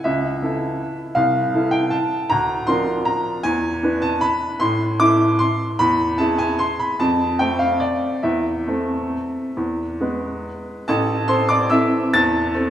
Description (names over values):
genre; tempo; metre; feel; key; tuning
classical, piano waltz; 131-165 BPM; 3/4; rubato; A minor; A4 = 440 Hz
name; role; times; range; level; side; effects
clear upright piano; solo; 0.0-12.7 s; A1 to A6; -18 LUFS; equal; none
room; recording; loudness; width
wet concert hall reverb, RT60 2.5 s; recorded in a church or concert hall; -17 LUFS; side -10 dB against mid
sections
0.0-10.9 A section; 10.9-12.7 B section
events
none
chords
0.0 A/C#; 1.2 Am/C; 2.3 Bb/D; 3.4 E7; 4.6 Am; 5.8 E; 7.0 F; 8.2 Am/E; 9.6 E; 10.9 Am